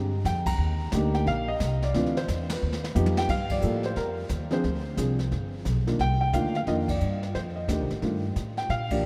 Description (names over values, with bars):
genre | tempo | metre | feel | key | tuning
jazz piano trio | 178 BPM | 4/4 | swing 63% on 8ths | G minor from 3.3 s | A4 = 438 Hz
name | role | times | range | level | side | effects
warm baby grand piano | melody | 0.0-9.1 s | Eb3 to Bb5 | -30 LUFS | equal | none
upright bass | bass | 0.0-9.1 s | G1 to Bb2 | -30 LUFS | equal | none
jazz brush drum kit | drums | 0.2-9.1 s | brushed snare drum, hi-hat, kick drum, ride cymbal, snare drum, toms | -38 LUFS | equal | none
room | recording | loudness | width
wet cathedral reverb, RT60 5.3 s | in a vast, echoing space | -27 LUFS | mono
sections
0.0-3.3 A section; 3.3-9.1 B section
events
band accent 0.4, 2.4, 3.5, 6.8, 8.9; drum fill 2.6-3.3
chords
0.0 Bb5; 0.6 Ebmaj7; 1.9 Dm9; 2.6 Gaug7; 3.3 Gm9; 4.6 Dm7b5; 5.3 G; 6.0 Cm11; 7.3 F13